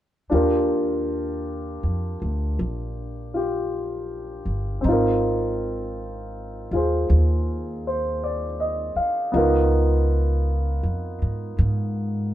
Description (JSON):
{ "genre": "jazz", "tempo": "53 BPM", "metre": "4/4", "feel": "swing 66% on 8ths", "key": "Eb major", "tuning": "A4 = 440 Hz", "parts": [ { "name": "warm grand piano", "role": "accompaniment", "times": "0.3-12.3 s", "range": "Cb4 to F5", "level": "-24 LUFS", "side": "equal", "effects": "none" }, { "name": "upright bass", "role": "bass", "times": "0.3-12.3 s", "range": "G1 to Ab2", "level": "-24 LUFS", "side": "equal", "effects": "none" } ], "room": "light reverb", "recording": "band playing live in one room", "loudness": "-21 LUFS", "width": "side -12 dB against mid", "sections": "0.3-12.3 A section", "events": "none", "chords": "0.3 Ebmaj9; 4.8 Ab6; 9.3 Db13" }